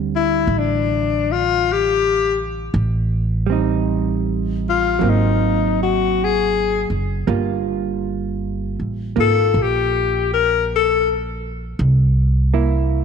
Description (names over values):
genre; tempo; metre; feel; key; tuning
jazz ballad; 53 BPM; 4/4; swing 66% on 8ths; unclear; A4 = 441 Hz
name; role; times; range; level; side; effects
hollow-body jazz guitar; accompaniment; 0.0-13.0 s; D3 to F4; -23 LUFS; right 9 dB; none
upright bass; bass; 0.0-13.0 s; Gb1 to D2; -20 LUFS; right 1 dB; none
breathy alto saxophone; melody; 0.2-11.2 s; D4 to Bb4; -18 LUFS; left 9 dB; none
room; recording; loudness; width
moderate echo chamber reverb, RT60 2.1 s; 1960s-style stereo with parts hard left and right; -16 LUFS; side -6 dB against mid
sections
0.0-13.0 A section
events
alto saxophone solo 0.0-13.0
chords
0.0 D7sus4; 2.7 Am7b5; 5.0 Ab9; 7.3 Gm7; 11.8 C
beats
0.48 1.61 | 2.74 3.87 5.01 6.15 | 7.28 8.41 9.54 10.67 | 11.80 12.92